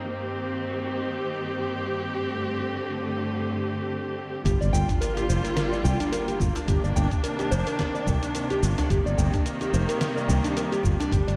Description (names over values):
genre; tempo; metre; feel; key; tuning
organic downtempo; 108 BPM; 4/4; swing 56% on 16ths; unclear; A4 = 440 Hz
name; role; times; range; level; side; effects
clear studio string section; sustained chords; 0.0-11.4 s; G2 to G4; -31 LUFS; equal; sidechain pumping
dusty soul sampler-style drum kit; drums; 0.0-11.4 s; cabasa, hi-hat, snare drum; -37 LUFS; equal; low-pass filter on perc, low-pass filter on hats, low-pass filter on snare
nylon-string guitar; arpeggios; 4.5-11.4 s; D4 to G5; -32 LUFS; equal; vintage 12-bit sampler grit, delay
sustaining fretless electric bass; bass; 4.5-11.4 s; F1 to C2; -27 LUFS; equal; tube saturation, lush chorus, sidechain pumping
electronic kick drum; drums; 4.5-11.2 s; none; -29 LUFS; equal; none
impact; sound effects; 4.5-6.7 s; none; -35 LUFS; equal; none
djembe; percussion; 4.7-11.1 s; none; -35 LUFS; equal; none
room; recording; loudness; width
moderate lush hall reverb, RT60 2.3 s; dreamy mix soaked in reverb; -26 LUFS; mono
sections
0.0-4.5 A section; 4.5-11.4 B section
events
impact 4.5-6.7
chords
0.0 Eb6/G; 2.2 D7sus4/G; 4.5 Gm7; 6.7 Cm9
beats
| 0.01 0.57 1.12 1.68 | 2.23 2.79 3.34 3.90 | 4.46 5.01 5.57 6.12 | 6.68 7.23 7.79 8.34 | 8.90 9.46 10.01 10.57 | 11.12